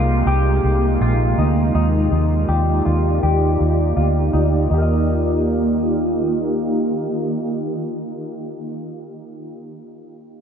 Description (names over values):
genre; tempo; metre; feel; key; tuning
dream pop; 81 BPM; 4/4; straight; Eb major; A4 = 441 Hz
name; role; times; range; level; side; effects
shimmering ambient pad; sustained chords; 0.0-8.2 s; C3 to D5; -21 LUFS; right 1 dB; chorus, built-in reverb, low-pass filter
clean electric guitar; arpeggios; 0.0-8.3 s; Eb4 to Eb5; -25 LUFS; left 3 dB; wide subtle chorus, low-pass filter, ping-pong delay
vintage muted fingered electric bass; bass; 0.0-8.2 s; Bb1 to Eb2; -18 LUFS; equal; none
room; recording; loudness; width
moderate huge ambient reverb, RT60 7.3 s; nothing above 7.6 kHz; -16 LUFS; side -7 dB against mid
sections
0.0-4.7 A section; 4.7-7.7 B section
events
filter sweep 0.0-4.7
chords
0.0 Ab69/C; 1.7 Ebmaj9; 4.7 Ebadd9